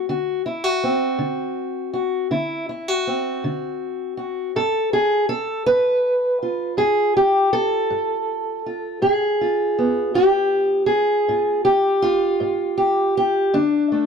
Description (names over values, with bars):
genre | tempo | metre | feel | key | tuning
acoustic country blues, solo or duo | 54 BPM (dotted quarters) | 12/8 | straight | unclear | A4 = 440 Hz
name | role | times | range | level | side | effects
fingerpicked steel-string acoustic guitar | solo | 0.0-14.1 s | G2 to B4 | -18 LUFS | equal | none
room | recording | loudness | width
light reverb | dark, warm production | -18 LUFS | side -6 dB against mid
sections
0.0-14.1 A section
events
none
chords
0.0 D7; 4.6 G7; 9.0 G7b9/Ab; 13.5 D5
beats
| 0.09 1.20 2.32 3.44 | 4.56 5.68 6.80 7.92 | 9.04 10.17 11.29 12.41 | 13.54